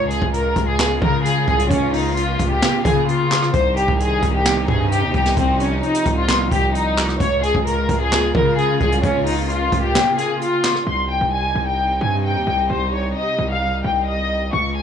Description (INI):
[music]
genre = hip hop, trap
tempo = 131 BPM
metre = 4/4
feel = half-time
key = C phrygian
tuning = A4 = 442 Hz
[part]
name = warm studio violin section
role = melody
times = 0.0-14.8 s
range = C4 to Db6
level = -19 LUFS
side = left 1 dB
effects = low-pass filter, tape echo
[part]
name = warm symphonic string section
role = sustained chords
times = 0.0-14.8 s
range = C3 to F4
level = -26 LUFS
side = left 1 dB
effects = none
[part]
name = distorted 808-style bass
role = bass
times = 0.0-14.8 s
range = C2 to Db3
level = -22 LUFS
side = equal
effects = distortion
[part]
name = jazz brush drum kit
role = drums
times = 0.1-10.9 s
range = handclaps, hi-hat, kick drum, rim click, snare drum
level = -22 LUFS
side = right 1 dB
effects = none
[sound]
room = studio reverb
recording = dry, gritty hardware recording, studio ambience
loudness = -16 LUFS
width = side -8 dB against mid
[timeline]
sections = 0.0-10.9 A section; 10.9-14.8 B section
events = kick muted 9.9-10.9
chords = 0.0 Db; 3.5 Cm; 7.2 Db; 10.9 Cm